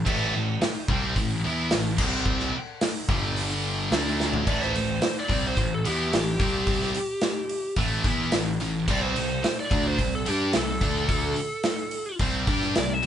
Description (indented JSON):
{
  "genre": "hard rock",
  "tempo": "109 BPM",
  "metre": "4/4",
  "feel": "straight",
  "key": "A minor",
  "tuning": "A4 = 435 Hz",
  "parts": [
    { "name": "fuzz picked electric bass", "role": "bass", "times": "0.0-13.0 s", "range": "G1 to G2", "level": "-29 LUFS", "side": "equal", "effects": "overdrive" },
    { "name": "high-gain distorted guitar", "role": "riff", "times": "0.1-13.1 s", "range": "G2 to G4", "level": "-28 LUFS", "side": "left 1 dB", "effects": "distortion" },
    { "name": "big rock drum kit", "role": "drums", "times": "0.1-13.1 s", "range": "crash cymbal, hi-hat, kick drum, snare drum, toms", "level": "-27 LUFS", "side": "equal", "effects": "none" },
    { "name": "biting lead guitar", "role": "melody", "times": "4.5-13.1 s", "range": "G4 to E5", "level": "-29 LUFS", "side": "right 1 dB", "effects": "overdrive" }
  ],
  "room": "light reverb",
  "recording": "band playing live in one room, nothing above 10.4 kHz",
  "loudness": "-23 LUFS",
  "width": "side -10 dB against mid",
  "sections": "0.0-4.5 A section; 4.5-13.1 B section",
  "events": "drum fill 4.2; lead electric guitar solo 4.5-13.1",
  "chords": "0.0 Am; 2.0 C5; 3.1 G5; 3.9 D5; 4.5 Am; 6.4 C5; 7.8 A5; 8.9 C5; 10.8 D5; 12.2 C5"
}